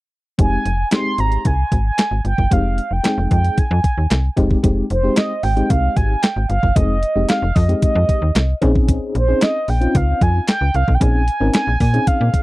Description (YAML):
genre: early-eighties boogie funk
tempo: 113 BPM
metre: 4/4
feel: straight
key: unclear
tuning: A4 = 441 Hz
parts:
  - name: mellow horn-like synth lead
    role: melody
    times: 0.4-12.4 s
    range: C5 to C6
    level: -21 LUFS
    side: right 2 dB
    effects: chorus, tape echo
  - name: FM electric piano with tremolo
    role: accompaniment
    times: 0.4-12.4 s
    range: Ab3 to Bb4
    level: -22 LUFS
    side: left 2 dB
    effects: none
  - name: slap-like FM bass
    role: bass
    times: 0.4-12.3 s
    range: F1 to Bb2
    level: -17 LUFS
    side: equal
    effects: none
  - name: detuned 8-bit digital drum machine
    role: drums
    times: 0.4-12.4 s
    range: handclaps, hi-hat, kick drum, snare drum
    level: -17 LUFS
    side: equal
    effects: none
room: little or no reverb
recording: dry, close 1970s-style studio recording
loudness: -14 LUFS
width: side -19 dB against mid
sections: 0.4-4.6 A section; 4.6-12.4 B section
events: none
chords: 0.4 Fm9; 8.6 Bbm11